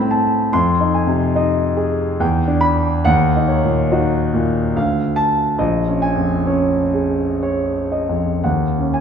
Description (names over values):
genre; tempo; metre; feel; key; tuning
classical, impressionist solo piano; 57-74 BPM; 3/4; rubato; unclear; A4 = 437 Hz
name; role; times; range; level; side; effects
warm concert grand piano; solo; 0.0-9.0 s; Bb1 to C6; -15 LUFS; equal; none
room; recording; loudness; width
moderate scoring stage reverb, RT60 1.8 s; minimal, uncompressed stereo recording; -15 LUFS; side -7 dB against mid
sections
0.0-9.0 A section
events
none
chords
0.0 Amadd9; 0.5 Fm7; 2.2 Em7; 3.1 Ebm7; 4.7 Dm; 5.6 Bbm7; 8.4 Ebm7